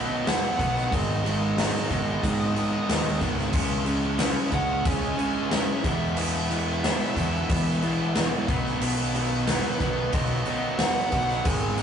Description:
quiet-loud alternative rock; 91 BPM; 4/4; straight; A4 = 439 Hz
high-gain lead guitar; melody; 0.0-11.8 s; B4 to G#5; -31 LUFS; right 2 dB; distortion
heavy high-gain guitar; riff; 0.0-11.8 s; E2 to C#4; -34 LUFS; left 1 dB; distortion
raw garage guitar; riff; 0.0-11.8 s; E2 to C#4; -31 LUFS; left 3 dB; overdrive
thick fuzz guitar; riff; 0.0-11.8 s; G#2 to E4; -30 LUFS; right 5 dB; distortion
huge arena drum kit; drums; 0.3-11.8 s; crash cymbal, kick drum, snare drum; -27 LUFS; equal
growling fingered electric bass; bass; 0.6-11.8 s; G#1 to E3; -29 LUFS; left 1 dB; overdrive
light reverb; rough rehearsal-room recording, nothing above 10.5 kHz; -22 LUFS; side -8 dB against mid
0.0-11.8 A section
0.0 B; 0.9 G#m; 3.5 C#m; 5.8 E; 8.5 B

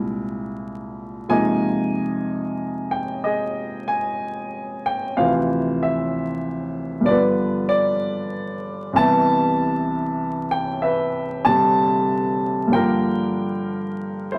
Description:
solo jazz; 63 BPM; 4/4; swing 67% on 8ths, rubato; A4 = 440 Hz
warm upright piano; solo; 0.0-14.4 s; C2 to A5; -22 LUFS; equal
wet studio reverb, RT60 0.8 s; vinyl crackle; -22 LUFS; mono
0.0-14.4 A section
0.0 C7b13; 1.3 Fm7; 5.2 Dm9; 7.1 G7; 9.0 Cmaj7; 12.7 Gm7

